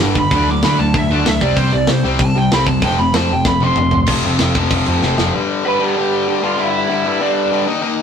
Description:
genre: punk rock.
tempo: 192 BPM.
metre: 4/4.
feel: straight.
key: G mixolydian.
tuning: A4 = 440 Hz.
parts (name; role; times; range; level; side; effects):
distorted electric guitar; riff; 0.0-8.0 s; F2 to Eb4; -18 LUFS; left 5 dB; overdrive.
sludgy distorted guitar; riff; 0.0-5.3 s; F2 to F4; -22 LUFS; right 5 dB; overdrive.
overdriven picked electric bass; bass; 0.0-5.3 s; F1 to D3; -19 LUFS; equal; none.
lead guitar through a small cranked amp; melody; 0.2-7.7 s; D4 to D6; -18 LUFS; right 2 dB; overdrive.
tight metal drum kit; drums; 0.2-5.3 s; crash cymbal, hi-hat, kick drum, snare drum, toms; -19 LUFS; equal; none.
room: moderate stone room reverb, RT60 1.1 s.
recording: rough rehearsal-room recording.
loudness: -13 LUFS.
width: side -7 dB against mid.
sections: 0.0-4.1 A section; 4.1-5.3 B section; 5.3-8.0 C section.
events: lead electric guitar solo 0.0-4.1; drum fill 3.5-4.1, 5.0-5.3.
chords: 0.3 D; 1.4 C5; 2.8 F; 5.3 G5.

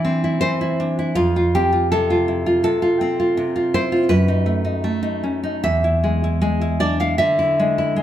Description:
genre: romantic piece for solo classical guitar.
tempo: 81 BPM.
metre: 4/4.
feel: rubato.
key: unclear.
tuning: A4 = 440 Hz.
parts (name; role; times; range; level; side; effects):
nylon-string guitar; solo; 0.0-8.0 s; E2 to F5; -17 LUFS; equal; none.
room: moderate recital hall reverb, RT60 1.6 s.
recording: none.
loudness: -17 LUFS.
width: side -11 dB against mid.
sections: 0.0-8.0 A section.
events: none.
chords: 0.0 Am (rootless); 1.2 F; 4.1 B7/F#; 5.6 E; 7.2 E7/D.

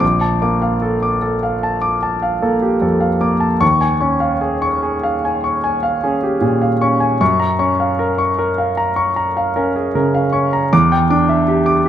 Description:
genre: classical, impressionist solo piano.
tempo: 51 BPM (dotted quarters).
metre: 9/8.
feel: rubato.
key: unclear.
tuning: A4 = 441 Hz.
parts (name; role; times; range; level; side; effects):
clear concert grand piano; solo; 0.0-11.9 s; Bb1 to D6; -14 LUFS; equal; none.
room: moderate recital hall reverb, RT60 1.4 s.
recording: close, detailed microphones.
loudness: -14 LUFS.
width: side -10 dB against mid.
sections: 0.0-11.9 A section.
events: none.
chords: 0.0 Bbmaj7; 3.6 Eb9sus4; 7.2 F#maj7; 10.7 Em7.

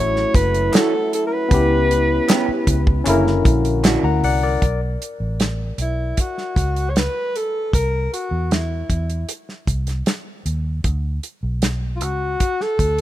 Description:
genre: lush 1970s-style soul.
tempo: 77 BPM.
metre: 4/4.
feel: straight.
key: B minor.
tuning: A4 = 438 Hz.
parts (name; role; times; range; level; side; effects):
warm alto saxophone; melody; 0.0-13.0 s; E4 to C#5; -22 LUFS; equal; none.
barky tine electric piano; accompaniment; 0.0-4.8 s; D3 to A#5; -23 LUFS; left 5 dB; overdrive.
mellow French horn section; sustained chords; 0.0-4.6 s; C#3 to B4; -26 LUFS; right 2 dB; stereo widening.
vintage muted fingered electric bass; bass; 0.0-13.0 s; F#1 to E2; -21 LUFS; equal; none.
damped 70s drum kit; drums; 0.2-13.0 s; hi-hat, kick drum, snare drum; -19 LUFS; equal; none.
electric guitar through a small old amp; riff; 0.7-4.0 s; E3 to G4; -26 LUFS; right 6 dB; spring reverb.
group handclap; percussion; 0.7-4.0 s; none; -31 LUFS; left 2 dB; none.
mellow trombone section; stabs; 3.1-3.3 s; C#3 to E4; -23 LUFS; right 3 dB; none.
room: little or no reverb.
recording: rough home demo mix.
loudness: -17 LUFS.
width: side -13 dB against mid.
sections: 0.0-4.6 A section; 4.6-13.0 B section.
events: band accent 1.5-4.6.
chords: 0.0 F#m7; 1.5 C#m7b5; 3.1 F#7b13; 4.6 B5; 7.7 C; 10.8 Bmadd9.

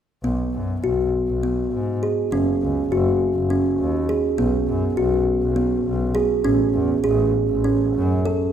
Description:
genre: contemporary instrumental, chamber music in an uneven meter.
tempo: 202 BPM (eighths).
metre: 7/8.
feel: straight.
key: B mixolydian.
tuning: A4 = 440 Hz.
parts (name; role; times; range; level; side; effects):
kalimba; arpeggios; 0.2-8.5 s; B3 to A4; -20 LUFS; right 1 dB; none.
rich double bass; bass; 0.2-8.2 s; F#1 to G#2; -24 LUFS; left 1 dB; none.
room: wet scoring stage reverb, RT60 1.6 s.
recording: none.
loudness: -18 LUFS.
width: side -9 dB against mid.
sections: 0.2-8.5 A section.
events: none.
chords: 0.2 B5; 2.3 F#5; 4.4 B5; 6.4 Amaj7.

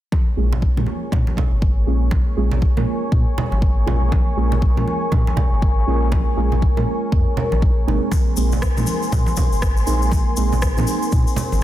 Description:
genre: afro house.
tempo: 120 BPM.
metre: 4/4.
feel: swing 60% on 16ths.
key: Bb minor.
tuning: A4 = 440 Hz.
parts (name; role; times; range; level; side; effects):
dark analog pad; sustained chords; 0.1-11.6 s; Bb4 to Db6; -27 LUFS; left 2 dB; chorus, vintage 12-bit sampler grit, sidechain pumping.
electronic kick drum; drums; 0.1-11.2 s; none; -18 LUFS; equal; studio reverb.
congas; percussion; 0.1-11.6 s; none; -26 LUFS; right 2 dB; none.
deep mellow chord stab; stabs; 0.4-11.6 s; Ab3 to Bb4; -26 LUFS; right 5 dB; chorus, sidechain pumping, digital delay.
warm sub bass; bass; 0.4-11.6 s; Ab1 to Bb2; -20 LUFS; equal; sidechain pumping.
tube shaker; percussion; 8.1-11.6 s; none; -31 LUFS; left 6 dB; none.
electronic rim click; drums; 8.6-10.7 s; none; -31 LUFS; equal; soft clipping on snare, studio reverb.
room: light reverb, digital ambience.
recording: dense, heavily limited modern master.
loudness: -16 LUFS.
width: side -13 dB against mid.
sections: 0.1-11.6 A section.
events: none.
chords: 0.1 Bbm7; 8.1 Abadd9.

